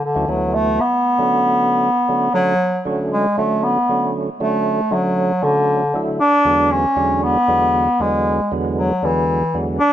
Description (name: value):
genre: progressive instrumental, progressive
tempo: 234 BPM (eighths)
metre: 7/8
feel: straight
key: B dorian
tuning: A4 = 435 Hz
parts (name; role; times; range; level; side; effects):
- clear bass clarinet; melody; 0.0-9.9 s; D3 to D4; -16 LUFS; equal; tape echo
- percussive tonewheel organ; accompaniment; 0.1-9.8 s; D2 to E4; -22 LUFS; right 1 dB; overdrive, chorus vibrato, slow rotary speaker
room: moderate small room reverb, RT60 0.5 s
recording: none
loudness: -15 LUFS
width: side -11 dB against mid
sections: 0.0-2.6 A section; 2.6-9.9 B section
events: none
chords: 0.0 D6; 0.8 Bm7; 2.6 Bm7 (rootless); 6.2 E7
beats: 0.03 0.28 0.54 | 0.80 1.06 1.31 1.57 1.83 2.09 2.34 | 2.60 2.86 3.12 3.37 3.63 3.89 4.14 | 4.40 4.66 4.91 5.17 5.43 5.68 5.94 | 6.20 6.46 6.71 6.97 7.23 7.48 7.74 | 8.00 8.25 8.51 8.77 9.02 9.28 9.54 | 9.79